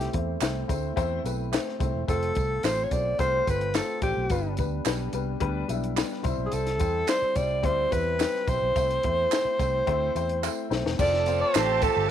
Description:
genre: uptempo 1960s-style soul.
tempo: 108 BPM.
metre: 4/4.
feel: straight.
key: unclear.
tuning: A4 = 440 Hz.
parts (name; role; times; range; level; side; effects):
breathy alto saxophone; melody; 0.0-12.1 s; G4 to D5; -26 LUFS; equal; none.
dark upright piano; accompaniment; 0.0-12.0 s; G3 to D5; -32 LUFS; left 9 dB; none.
mellow tonewheel organ; sustained chords; 0.0-12.1 s; G3 to F4; -39 LUFS; right 16 dB; slow rotary speaker, chorus vibrato.
vintage muted fingered electric bass; bass; 0.0-12.1 s; E1 to E2; -31 LUFS; right 2 dB; none.
compact cocktail drum kit; drums; 0.0-12.0 s; crash cymbal, hi-hat, kick drum, snare drum; -30 LUFS; left 2 dB; none.
handclaps and tambourine; percussion; 0.4-12.0 s; none; -37 LUFS; right 16 dB; none.
warm studio violin section; second line; 11.0-12.1 s; A4 to A5; -30 LUFS; right 15 dB; none.
clear horn section; second line; 11.3-12.1 s; A3 to A4; -32 LUFS; right 15 dB; none.
room: light reverb, studio reverb.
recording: 1960s-style stereo with parts hard left and right.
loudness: -24 LUFS.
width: side -10 dB against mid.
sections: 0.0-11.0 A section; 11.0-12.1 B section.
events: drum fill 10.4-11.0.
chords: 0.0 Am/C; 2.1 F; 4.3 G; 6.2 C; 8.8 Am/C; 11.0 F.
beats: 0.41 0.97 1.52 | 2.08 2.63 3.19 3.75 | 4.30 4.86 5.41 5.97 | 6.53 7.09 7.64 8.20 | 8.76 9.32 9.87 10.43 | 10.99 11.55 12.10.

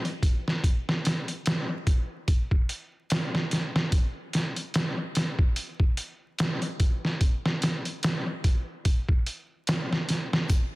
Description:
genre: trip hop.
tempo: 73 BPM.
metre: 4/4.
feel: swing 57% on 16ths.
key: none.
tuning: none.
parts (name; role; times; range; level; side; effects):
trip hop sampler-style drum kit; drums; 0.0-10.7 s; hi-hat, kick drum, snare drum; -24 LUFS; equal; none.
tube shaker; percussion; 10.5-10.7 s; none; -44 LUFS; left 2 dB; none.
room: little or no reverb.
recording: dense, heavily limited modern master, vinyl crackle.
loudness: -25 LUFS.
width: side -21 dB against mid.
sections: 0.0-10.8 A section.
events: none.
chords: none.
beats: | 0.63 1.45 2.27 3.10 | 3.92 4.74 5.56 6.38 | 7.21 8.03 8.85 9.67 | 10.49.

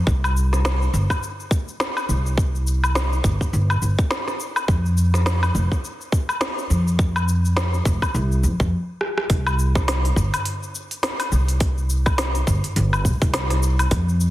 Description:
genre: organic downtempo.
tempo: 104 BPM.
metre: 4/4.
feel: swing 58% on 16ths.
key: unclear.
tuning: A4 = 440 Hz.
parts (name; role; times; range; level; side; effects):
upright bass; bass; 0.1-14.3 s; F1 to F2; -20 LUFS; equal; sidechain pumping.
electronic kick drum; drums; 0.1-14.0 s; none; -21 LUFS; equal; overdrive.
organic electronic drum kit; drums; 0.1-14.3 s; hi-hat, rim click, shaker, snare drum, woodblock; -25 LUFS; left 1 dB; overdrive.
room: light reverb.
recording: heavily compressed radio sound, multiband compression.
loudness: -18 LUFS.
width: side -15 dB against mid.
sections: 0.0-9.3 A section; 9.3-14.3 B section.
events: stop 8.7-9.3; drum fill 9.0.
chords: none.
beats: | 0.07 0.65 1.22 1.80 | 2.38 2.95 3.53 4.11 | 4.68 5.26 5.84 6.42 | 6.99 7.57 8.15 8.72 | 9.30 9.88 10.45 11.03 | 11.61 12.18 12.76 13.34 | 13.91.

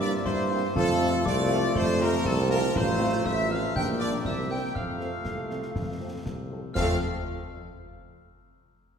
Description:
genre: military-style march for wind band.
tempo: 120 BPM.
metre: 2/4.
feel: straight.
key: F major.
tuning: A4 = 437 Hz.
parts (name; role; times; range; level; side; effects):
bright trumpet section; melody; 0.0-7.0 s; A4 to G5; -34 LUFS; equal; none.
glockenspiel with hard plastic mallets; second line; 0.0-7.0 s; A5 to G6; -37 LUFS; left 5 dB; none.
large flute ensemble; second line; 0.0-7.0 s; A4 to G5; -34 LUFS; left 1 dB; none.
warm euphonium; second line; 0.0-6.5 s; A3 to F4; -33 LUFS; right 3 dB; none.
mellow French horn section; accompaniment; 0.0-7.0 s; F3 to Bb4; -36 LUFS; left 3 dB; none.
bright trombone section; sustained chords; 0.0-7.0 s; E3 to Bb3; -35 LUFS; right 2 dB; none.
mellow tuba; bass; 0.0-7.0 s; A1 to G2; -29 LUFS; right 1 dB; none.
concert snare drum, concert bass drum and clash cymbals; drums; 0.3-7.0 s; none; -34 LUFS; left 1 dB; none.
room: wet concert hall reverb, RT60 2.4 s.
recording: minimal, uncompressed stereo recording.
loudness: -24 LUFS.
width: side -7 dB against mid.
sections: 0.0-6.8 A section.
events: none.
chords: 0.0 C7/G; 0.8 F; 2.8 F/A; 3.8 Gm7/Bb; 4.3 C7; 4.8 F.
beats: 0.26 | 0.76 1.26 | 1.76 2.26 | 2.76 3.26 | 3.76 4.25 | 4.75 5.25 | 5.75 6.25 | 6.75.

